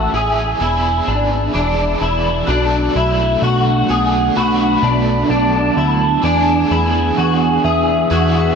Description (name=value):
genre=dream pop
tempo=64 BPM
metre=4/4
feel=straight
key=unclear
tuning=A4 = 440 Hz
part: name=soft octave-layered synth lead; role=melody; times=0.0-8.6 s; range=E5 to B5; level=-20 LUFS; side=equal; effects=chorus, phaser, tape echo
part: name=biting overdriven guitar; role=accompaniment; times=0.0-8.6 s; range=A2 to A4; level=-24 LUFS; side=right 5 dB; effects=tremolo, lush chorus
part: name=warbly tape-like pad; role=sustained chords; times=0.0-8.6 s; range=E3 to E6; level=-20 LUFS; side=right 2 dB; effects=chorus, built-in reverb
part: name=electric guitar at the edge of break-up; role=arpeggios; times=0.0-8.6 s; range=D4 to G#4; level=-19 LUFS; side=left 3 dB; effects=ensemble chorus, tape echo
part: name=fat analog bass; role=bass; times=0.0-8.5 s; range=E1 to E2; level=-19 LUFS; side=equal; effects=none
part: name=vibraphone with medium hard mallets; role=texture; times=2.5-8.6 s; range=F#4 to B4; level=-27 LUFS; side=left 4 dB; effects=tape echo
room=moderate lush hall reverb, RT60 3.1 s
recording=none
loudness=-13 LUFS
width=side -6 dB against mid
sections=0.0-2.5 A section; 2.5-8.6 B section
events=none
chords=0.0 Amaj7; 0.6 E7; 2.5 Bm7; 6.2 E7